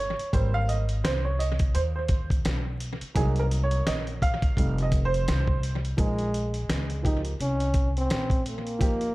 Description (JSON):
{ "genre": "hip hop, jazz-hop", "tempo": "85 BPM", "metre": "4/4", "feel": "swing 59% on 16ths", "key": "Bb dorian", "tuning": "A4 = 440 Hz", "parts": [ { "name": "warm upright piano", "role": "accompaniment", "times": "0.0-9.1 s", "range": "F3 to F5", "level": "-30 LUFS", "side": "right 3 dB", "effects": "none" }, { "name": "upright bass", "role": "bass", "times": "0.0-9.1 s", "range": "F1 to Eb2", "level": "-27 LUFS", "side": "equal", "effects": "none" }, { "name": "dusty soul sampler-style drum kit", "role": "drums", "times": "0.2-9.1 s", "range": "hi-hat, kick drum, snare drum", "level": "-27 LUFS", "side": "equal", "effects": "analog delay" }, { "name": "mellow trombone", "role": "melody", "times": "6.0-9.1 s", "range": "Ab3 to Eb4", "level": "-29 LUFS", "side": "equal", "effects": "analog delay" } ], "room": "light reverb, studio reverb", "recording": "echo-heavy mix, vinyl crackle", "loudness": "-24 LUFS", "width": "side -19 dB against mid", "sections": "0.0-6.0 A section; 6.0-9.1 B section", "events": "upright piano solo 0.0-6.0", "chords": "0.3 Abmaj7; 3.2 Cm7b5; 4.6 F7; 6.0 Bbm7" }